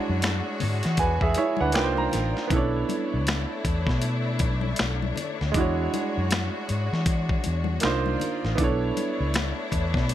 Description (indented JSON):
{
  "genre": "R&B, neo-soul",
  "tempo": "79 BPM",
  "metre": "4/4",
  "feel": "swing 60% on 16ths",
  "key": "B dorian",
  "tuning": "A4 = 440 Hz",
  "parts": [
    { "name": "clear concert grand piano", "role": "accompaniment", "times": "0.0-10.1 s", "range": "G#3 to Bb5", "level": "-28 LUFS", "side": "right 4 dB", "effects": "none" },
    { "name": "clear studio string section", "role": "sustained chords", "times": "0.0-10.1 s", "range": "Eb3 to D5", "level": "-33 LUFS", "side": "left 4 dB", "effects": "none" },
    { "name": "vintage muted fingered electric bass", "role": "bass", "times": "0.1-10.1 s", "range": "A1 to E3", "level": "-27 LUFS", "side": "left 1 dB", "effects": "none" },
    { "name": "dusty soul sampler-style drum kit", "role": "drums", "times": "0.2-10.1 s", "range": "finger snaps, hi-hat, kick drum, snare drum", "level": "-27 LUFS", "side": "left 1 dB", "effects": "none" },
    { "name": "congas", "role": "percussion", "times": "0.2-10.1 s", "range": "none", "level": "-37 LUFS", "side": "left 11 dB", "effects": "none" }
  ],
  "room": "little or no reverb",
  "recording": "none",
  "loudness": "-23 LUFS",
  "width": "side -12 dB against mid",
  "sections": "0.0-10.1 A section",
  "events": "grand piano fill 1.0-2.5",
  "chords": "0.0 E13; 1.7 Cm11; 2.5 Bm11; 5.5 E13; 7.8 Cm11; 8.6 Bm11"
}